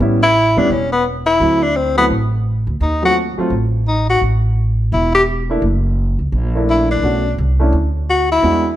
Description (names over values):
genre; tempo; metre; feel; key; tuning
jazz, small-group swing and bop; 171 BPM; 4/4; swing 62% on 8ths; unclear; A4 = 439 Hz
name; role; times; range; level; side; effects
warm upright piano; accompaniment; 0.0-8.6 s; F#3 to F#4; -19 LUFS; right 1 dB; none
upright bass; bass; 0.0-8.8 s; E1 to E2; -17 LUFS; right 1 dB; none
warm tenor saxophone; melody; 0.2-8.8 s; B3 to G4; -15 LUFS; left 2 dB; none
room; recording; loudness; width
moderate large studio reverb, RT60 1.2 s; none; -13 LUFS; side -13 dB against mid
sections
0.0-8.8 A section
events
none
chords
0.0 A9; 1.4 D9; 2.8 D#dim7; 4.2 A5; 5.6 F#7alt; 7.0 Bm7